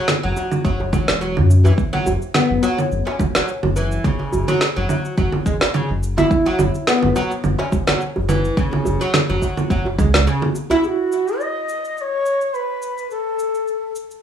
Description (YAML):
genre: organic downtempo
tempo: 106 BPM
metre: 4/4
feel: swing 54% on 16ths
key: unclear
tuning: A4 = 441 Hz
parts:
  - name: oud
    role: arpeggios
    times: 0.0-10.8 s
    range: C#3 to E4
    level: -21 LUFS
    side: left 1 dB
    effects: digital delay
  - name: electronic snare drum, congas and shaker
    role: drums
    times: 0.1-14.2 s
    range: none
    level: -20 LUFS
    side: right 2 dB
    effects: none
  - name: round analog bass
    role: bass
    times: 0.2-10.3 s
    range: E1 to F#2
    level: -19 LUFS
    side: equal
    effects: sidechain pumping
  - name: djembe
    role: percussion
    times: 0.4-10.8 s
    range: none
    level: -26 LUFS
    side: right 3 dB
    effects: none
  - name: electronic kick drum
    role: drums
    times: 0.6-10.1 s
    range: none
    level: -21 LUFS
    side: equal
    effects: none
  - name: bright reedy bansuri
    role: melody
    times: 10.8-13.9 s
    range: F#4 to D#5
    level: -21 LUFS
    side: left 1 dB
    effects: digital delay
room: moderate small room reverb, RT60 0.5 s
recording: rough home demo mix, studio reverb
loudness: -16 LUFS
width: side -9 dB against mid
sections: 0.0-10.8 A section; 10.8-14.2 B section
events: none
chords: 0.0 F#7(no3); 1.8 Esus2; 10.8 N.C.